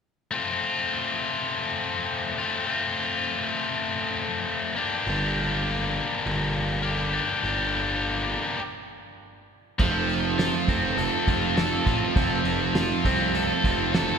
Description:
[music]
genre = indie rock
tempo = 101 BPM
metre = 4/4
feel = straight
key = unclear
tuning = A4 = 441 Hz
[part]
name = scooped high-gain guitar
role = riff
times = 0.3-14.2 s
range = F3 to A4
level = -25 LUFS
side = left 3 dB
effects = distortion
[part]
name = fuzz picked electric bass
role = bass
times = 5.1-14.1 s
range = F1 to C2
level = -30 LUFS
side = right 1 dB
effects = overdrive
[part]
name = fuzz guitar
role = riff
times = 9.8-14.2 s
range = F3 to A4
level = -26 LUFS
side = right 8 dB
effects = distortion
[part]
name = cloth-damped thuddy drum kit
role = drums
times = 9.8-14.1 s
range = crash cymbal, hi-hat, kick drum, snare drum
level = -27 LUFS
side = right 1 dB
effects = none
[sound]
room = moderate church reverb, RT60 3.2 s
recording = recorded in a church or concert hall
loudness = -23 LUFS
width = side -6 dB against mid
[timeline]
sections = 0.3-9.8 A section; 9.8-14.2 B section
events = stop 8.6-9.8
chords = 0.3 F; 4.8 Gm; 9.8 F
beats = | 0.32 0.92 1.51 2.10 | 2.69 3.29 3.88 4.47 | 5.06 5.66 6.25 6.84 | 7.43 8.03 8.62 9.21 | 9.80 10.39 10.98 11.57 | 12.16 12.76 13.35 13.94

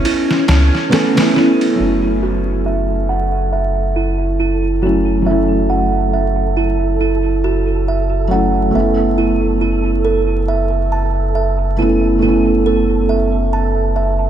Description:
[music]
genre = trip hop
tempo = 69 BPM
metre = 4/4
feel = swing 59% on 16ths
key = F# minor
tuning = A4 = 440 Hz
[part]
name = electric slide guitar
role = melody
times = 0.0-1.6 s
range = C#4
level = -20 LUFS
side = equal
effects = lush chorus, tape echo
[part]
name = felt-muted upright piano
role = accompaniment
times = 0.0-14.3 s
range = F#3 to A4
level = -18 LUFS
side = equal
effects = harmonic tremolo, low-pass filter, tape echo
[part]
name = music box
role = arpeggios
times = 0.0-14.3 s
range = E4 to A5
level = -18 LUFS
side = right 6 dB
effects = vintage 12-bit sampler grit, low-pass filter, analog delay
[part]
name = trip hop sampler-style drum kit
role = drums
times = 0.1-1.8 s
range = ride cymbal, snare drum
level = -19 LUFS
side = equal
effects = overdrive, small room ambience
[part]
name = soft dub sub bass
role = bass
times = 0.5-14.3 s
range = F#1 to C#2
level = -18 LUFS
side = equal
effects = none
[part]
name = wind-like tuned noise texture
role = texture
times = 2.6-14.3 s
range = A4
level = -26 LUFS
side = right 4 dB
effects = built-in reverb, ensemble chorus
[sound]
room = moderate plate reverb, RT60 2.9 s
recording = dreamy mix soaked in reverb, vinyl crackle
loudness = -13 LUFS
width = side -10 dB against mid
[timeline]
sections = 0.0-1.8 A section; 1.8-14.3 B section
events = break 0.0-1.8; filter sweep on felt piano 1.8-14.3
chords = 0.0 Aadd9; 1.8 F#m7; 8.7 Aadd9/F#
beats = 0.04 0.91 | 1.78 2.65 3.52 4.39 | 5.26 6.13 7.00 7.87 | 8.74 9.61 10.48 11.35 | 12.22 13.09 13.96

